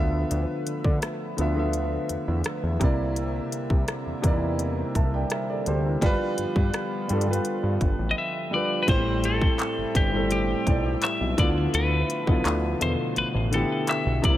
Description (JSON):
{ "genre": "contemporary R&B", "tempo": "84 BPM", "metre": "4/4", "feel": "straight", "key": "D dorian", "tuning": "A4 = 444 Hz", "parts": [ { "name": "warm concert grand piano", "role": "accompaniment", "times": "0.0-14.4 s", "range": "A2 to A5", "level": "-28 LUFS", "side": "equal", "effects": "none" }, { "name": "chorused pulse-width pad", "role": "sustained chords", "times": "0.0-14.4 s", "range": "D3 to E5", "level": "-34 LUFS", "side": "left 1 dB", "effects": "none" }, { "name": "fat analog bass", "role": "bass", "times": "0.0-14.4 s", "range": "G1 to D3", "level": "-26 LUFS", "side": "equal", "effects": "none" }, { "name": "trap drum kit", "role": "drums", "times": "0.3-14.4 s", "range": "handclaps, hi-hat, kick drum, rim click", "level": "-25 LUFS", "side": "equal", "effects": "none" }, { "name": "clean electric guitar", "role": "melody", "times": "8.1-14.3 s", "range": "G4 to E5", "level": "-28 LUFS", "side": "left 2 dB", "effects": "spring reverb, ping-pong delay" } ], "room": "little or no reverb", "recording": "none", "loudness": "-22 LUFS", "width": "side -13 dB against mid", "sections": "0.0-8.9 A section; 8.9-14.4 B section", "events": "drums muted 8.2-8.9", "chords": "0.0 Dm69; 2.8 C9; 6.0 G7; 8.9 Am9; 11.4 Dm69" }